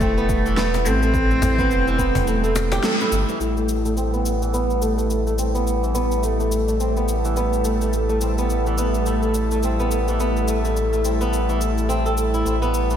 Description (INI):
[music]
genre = organic downtempo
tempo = 106 BPM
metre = 4/4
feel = swing 58% on 16ths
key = A minor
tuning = A4 = 440 Hz
[part]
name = warm cello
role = melody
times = 0.0-2.8 s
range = A3 to C4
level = -23 LUFS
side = equal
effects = tape echo, slapback echo
[part]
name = airy breathy pad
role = sustained chords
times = 0.0-13.0 s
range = G3 to A4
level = -27 LUFS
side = equal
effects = chorus, sidechain pumping
[part]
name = flamenco guitar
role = arpeggios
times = 0.0-13.0 s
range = E3 to A4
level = -23 LUFS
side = right 2 dB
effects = low-pass filter, tape echo, slapback echo
[part]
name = warm sub bass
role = bass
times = 0.0-13.0 s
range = E1 to A1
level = -23 LUFS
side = equal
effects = none
[part]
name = electronic cabasa and snare drum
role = drums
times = 0.0-13.0 s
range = none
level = -30 LUFS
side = equal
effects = studio reverb
[part]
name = electronic kick drum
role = drums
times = 0.0-2.1 s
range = none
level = -25 LUFS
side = equal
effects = studio reverb
[part]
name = quartz singing bowl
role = texture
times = 0.0-13.0 s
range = E4 to A4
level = -36 LUFS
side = left 6 dB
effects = none
[part]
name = cajon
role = percussion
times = 0.7-2.8 s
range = none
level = -28 LUFS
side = left 2 dB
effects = none
[sound]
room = moderate concert hall reverb, RT60 1.9 s, small room ambience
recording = big arena sound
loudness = -18 LUFS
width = side -9 dB against mid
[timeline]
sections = 0.0-3.4 A section; 3.4-13.0 B section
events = band accent 2.8; filter sweep on nylon-string guitar 3.4-13.0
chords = 0.0 Am7; 3.4 A7(no3)